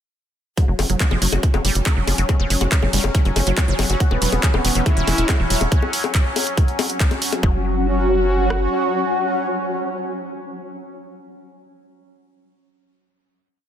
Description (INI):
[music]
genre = psychedelic trance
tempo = 140 BPM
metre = 4/4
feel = straight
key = unclear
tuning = A4 = 440 Hz
[part]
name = bubbling stepped-filter texture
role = sustained chords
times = 0.9-10.6 s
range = F#3 to C#4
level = -25 LUFS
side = equal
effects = chorus, built-in reverb, sidechain pumping
[part]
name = wide unison pluck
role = riff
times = 0.6-7.6 s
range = D#3 to F#4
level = -27 LUFS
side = equal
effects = auto-pan, sidechain pumping, tape echo
[part]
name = big-room dance drum kit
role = drums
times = 0.6-7.4 s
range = bongos, handclaps, hi-hat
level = -23 LUFS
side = left 2 dB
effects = overdrive
[part]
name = drum and bass drum kit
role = drums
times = 0.6-8.6 s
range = kick drum, rim click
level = -18 LUFS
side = equal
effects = none
[part]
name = tight sequencer bass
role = bass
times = 0.7-8.7 s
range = E1 to F#1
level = -21 LUFS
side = equal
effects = none
[part]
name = wide unison lead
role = melody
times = 4.0-10.6 s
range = B3 to G#4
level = -23 LUFS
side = left 1 dB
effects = phaser, cassette tape, sidechain pumping, ping-pong delay
[part]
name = formant-sweep wobble bass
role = second line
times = 5.2-5.4 s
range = G#3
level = -37 LUFS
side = right 1 dB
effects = none
[sound]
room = light reverb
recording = dense, heavily limited modern master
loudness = -17 LUFS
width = side -10 dB against mid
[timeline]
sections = 0.6-7.4 drop; 7.4-10.9 final chord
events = drop 0.6-7.4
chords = 0.6 F#5; 4.0 E5; 7.4 F#5